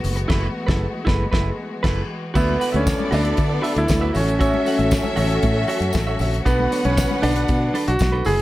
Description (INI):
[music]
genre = disco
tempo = 117 BPM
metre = 4/4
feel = straight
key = unclear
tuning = A4 = 443 Hz
[part]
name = clear studio string section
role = sustained chords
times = 0.0-8.4 s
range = D3 to F#4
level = -29 LUFS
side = left 2 dB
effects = none
[part]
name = fingered electric bass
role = bass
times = 0.0-8.4 s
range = F#1 to D3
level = -22 LUFS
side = equal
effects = none
[part]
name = damped 70s drum kit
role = drums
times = 0.0-8.4 s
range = crash cymbal, hi-hat, kick drum, snare drum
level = -24 LUFS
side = equal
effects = none
[part]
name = congas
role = percussion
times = 0.0-8.4 s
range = none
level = -33 LUFS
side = left 5 dB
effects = none
[part]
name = tambourine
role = percussion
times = 0.0-8.4 s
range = none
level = -39 LUFS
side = right 4 dB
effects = none
[part]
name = clean electric guitar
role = accompaniment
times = 0.2-8.4 s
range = D4 to F#5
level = -28 LUFS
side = right 3 dB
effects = none
[part]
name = warm symphonic violin section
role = second line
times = 2.3-8.2 s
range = B3 to F#5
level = -26 LUFS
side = left 1 dB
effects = none
[part]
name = clear concert grand piano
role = melody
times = 2.4-8.4 s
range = B3 to G#4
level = -22 LUFS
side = right 1 dB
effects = none
[sound]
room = light reverb, small room reverb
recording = none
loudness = -18 LUFS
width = side -16 dB against mid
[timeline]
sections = 0.0-2.4 A section; 2.4-8.4 B section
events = band accent 0.3-2.4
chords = 0.0 F#m11; 2.4 D69; 4.2 A6; 6.5 Bm7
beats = | 0.30 0.82 1.33 1.84 | 2.36 2.87 3.39 3.90 | 4.41 4.93 5.44 5.95 | 6.47 6.98 7.49 8.01